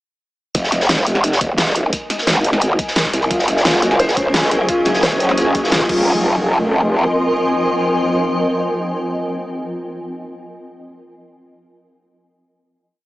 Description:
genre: dark technical drum and bass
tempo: 174 BPM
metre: 4/4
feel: straight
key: F phrygian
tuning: A4 = 440 Hz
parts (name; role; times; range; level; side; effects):
- growl bass; bass; 0.5-7.1 s; Eb1 to Db2; -17 LUFS; equal; chorus, overdrive, sidechain pumping
- crunchy breakbeat drum kit; drums; 0.5-5.8 s; hi-hat, snare drum; -24 LUFS; equal; high-pass filter on hats, high-pass filter on snare, high-pass filter on room
- dubstep drum kit; drums; 0.5-6.0 s; crash cymbal, hi-hat, snare drum; -20 LUFS; equal; overdrive
- electronic kick drum; drums; 0.5-6.0 s; none; -26 LUFS; equal; overdrive
- granular cloud pad; texture; 1.7-9.6 s; Bb4 to Ab5; -22 LUFS; equal; built-in reverb, ensemble chorus, sidechain pumping
- swarming drone; sustained chords; 4.0-9.6 s; F3 to Ab4; -21 LUFS; equal; built-in reverb, sidechain pumping
- felt-muted upright piano; arpeggios; 3.3-6.2 s; F4 to Db5; -20 LUFS; left 1 dB; vintage 12-bit sampler grit, sidechain pumping, tape echo
room: wet lush hall reverb, RT60 1.9 s, small room ambience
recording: dreamy mix soaked in reverb, small speaker sound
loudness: -14 LUFS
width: side -17 dB against mid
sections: 0.5-6.1 drop; 6.1-8.8 final note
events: drop 0.5-6.1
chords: 0.5 Fm; 3.3 Gb; 5.9 F5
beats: | 0.55 0.89 1.24 1.58 | 1.93 2.27 2.62 2.96 | 3.31 3.65 4.00 4.34 | 4.69 5.03 5.38 5.72 | 6.07 6.41 6.75 7.10 | 7.45 7.79 8.13 8.48

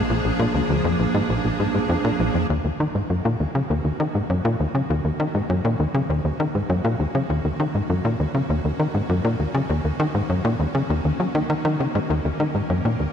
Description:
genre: ambient, sequencer-driven space music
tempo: 100 BPM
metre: 4/4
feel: straight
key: Eb minor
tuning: A4 = 440 Hz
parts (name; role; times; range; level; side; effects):
- evolving wavetable pad; sustained chords; 0.0-13.1 s; Eb3 to Bb4; -28 LUFS; right 1 dB; ensemble chorus, built-in reverb, shimmer reverb
- tight sequencer bass; riff; 0.0-13.1 s; Bb1 to Gb3; -21 LUFS; left 1 dB; ping-pong delay, shimmer reverb
- analog drone; bass; 0.0-2.5 s; Bb1; -36 LUFS; right 1 dB; none
room: wet plate reverb, RT60 2.6 s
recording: dreamy mix soaked in reverb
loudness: -20 LUFS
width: side -8 dB against mid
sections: 0.0-2.5 A section; 2.5-13.1 B section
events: fade-in on ambient pad 2.5-13.1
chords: 0.0 Bb7; 2.5 Ebm7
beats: | 0.10 0.70 1.30 1.90 | 2.50 3.10 3.70 4.30 | 4.90 5.50 6.10 6.70 | 7.30 7.90 8.50 9.10 | 9.70 10.30 10.90 11.50 | 12.10 12.70

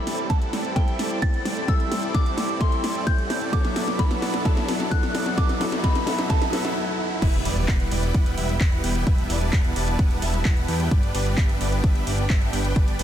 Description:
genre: EDM, festival progressive house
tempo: 130 BPM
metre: 4/4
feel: straight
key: E minor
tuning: A4 = 440 Hz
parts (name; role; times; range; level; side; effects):
- soft synth bell; melody; 0.0-6.7 s; G5 to A6; -30 LUFS; equal; chorus, phaser, dub echo
- dark baby grand piano; accompaniment; 0.0-7.2 s; F#3 to A4; -32 LUFS; left 2 dB; sidechain pumping, dub echo
- muted studio string section; sustained chords; 0.0-13.0 s; D4 to A5; -36 LUFS; left 1 dB; sidechain pumping
- supersaw chords; riff; 0.0-13.0 s; F#3 to G5; -29 LUFS; right 1 dB; sidechain pumping, low-pass filter, dub echo
- fat analog bass; bass; 0.0-13.0 s; E1 to A2; -29 LUFS; equal; sidechain pumping, high-pass filter
- riser and impact; sound effects; 0.0-9.1 s; none; -33 LUFS; right 1 dB; none
- pop drum kit; drums; 0.1-13.0 s; crash cymbal, handclaps, hi-hat, snare drum; -30 LUFS; equal; overdrive
- electronic kick drum; drums; 0.3-12.9 s; none; -21 LUFS; equal; overdrive
room: light reverb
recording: dense, heavily limited modern master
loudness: -20 LUFS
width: side -10 dB against mid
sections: 0.0-7.2 A section; 7.2-13.0 B section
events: build-up 0.0-7.2; drum fill 0.0-6.8; riser 0.0-7.2; break 6.8-7.2; drop 7.2-13.0; impact 7.2-9.1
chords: 0.0 Am7; 3.5 Bm; 7.2 Em; 10.9 G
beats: 0.30 0.76 1.22 | 1.68 2.15 2.61 3.07 | 3.53 3.99 4.45 4.92 | 5.38 5.84 6.30 6.76 | 7.22 7.68 8.14 8.61 | 9.07 9.53 9.99 10.45 | 10.91 11.38 11.84 12.30 | 12.76

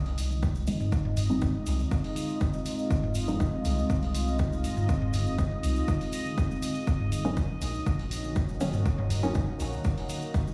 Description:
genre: dub techno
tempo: 121 BPM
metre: 4/4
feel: straight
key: F phrygian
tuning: A4 = 439 Hz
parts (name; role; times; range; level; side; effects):
- deep dark ambient pad; sustained chords; 0.2-10.5 s; Ab3 to Gb4; -37 LUFS; equal; chorus, built-in reverb, sidechain pumping
- soft dub sub bass; bass; 0.0-9.8 s; Eb1 to C2; -35 LUFS; equal; sidechain pumping
- bubbling stepped-filter texture; texture; 0.0-10.5 s; Eb5; -43 LUFS; equal; chorus, built-in reverb, sidechain pumping
- electronic hi-hat; drums; 0.1-10.2 s; none; -44 LUFS; equal; none
- tube shaker; percussion; 0.2-10.5 s; none; -49 LUFS; equal; none
- electronic toms; percussion; 0.3-10.5 s; none; -35 LUFS; equal; sidechain pumping on toms, dub echo
- electronic kick drum; drums; 0.4-10.4 s; none; -31 LUFS; equal; none
- filtered dub chord stab; stabs; 0.7-3.4, 7.2-9.3 s; Eb3 to Eb4; -36 LUFS; equal; phaser, cassette tape, sidechain pumping, dub echo
room: moderate echo chamber reverb, RT60 1.7 s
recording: played on a big sound system in a bare room, stone room reverb, small room ambience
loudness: -29 LUFS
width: mono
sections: 0.0-10.5 A section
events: none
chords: 0.0 Fm7; 6.9 Ebm7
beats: 0.43 | 0.92 1.42 1.91 2.41 | 2.91 3.40 3.90 4.39 | 4.89 5.38 5.88 6.38 | 6.87 7.37 7.86 8.36 | 8.86 9.35 9.85 10.34

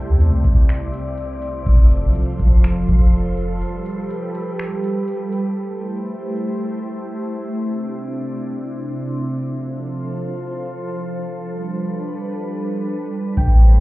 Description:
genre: hip hop, atmospheric cloud-rap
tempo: 123 BPM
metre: 4/4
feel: half-time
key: unclear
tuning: A4 = 441 Hz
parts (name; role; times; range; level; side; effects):
- glassy FM pad; sustained chords; 0.0-13.8 s; C3 to D5; -23 LUFS; right 1 dB; ensemble chorus, built-in reverb
- soft 808-style bass; bass; 0.0-3.6, 13.4-13.8 s; F1 to E2; -16 LUFS; equal; none
- wind-like tuned noise texture; texture; 0.0-5.5, 13.4-13.8 s; A4 to D6; -40 LUFS; equal; built-in reverb
- booming analog drum machine; drums; 0.2-5.4, 13.4-13.7 s; finger snaps, hi-hat, kick drum; -14 LUFS; equal; none
- muted felt-like synth keys; arpeggios; 13.4-13.8 s; G5; -29 LUFS; right 2 dB; chorus, low-pass filter
room: digital ambience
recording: heard muffled through a wall, club reverb, EQ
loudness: -18 LUFS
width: side -18 dB against mid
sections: 0.0-5.6 A section; 5.6-13.8 B section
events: break 3.6-5.6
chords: 0.0 Cadd9; 1.7 F; 3.6 Gadd9; 5.6 Am7; 7.5 Cadd9; 9.5 F; 11.4 Gadd9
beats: 0.20 0.69 1.18 | 1.67 2.15 2.64 3.13 | 3.62 4.10 4.59 5.08 | 5.57 6.05 6.54 7.03 | 7.52 8.01 8.49 8.98 | 9.47 9.96 10.45 10.93 | 11.42 11.91 12.40 12.88 | 13.37

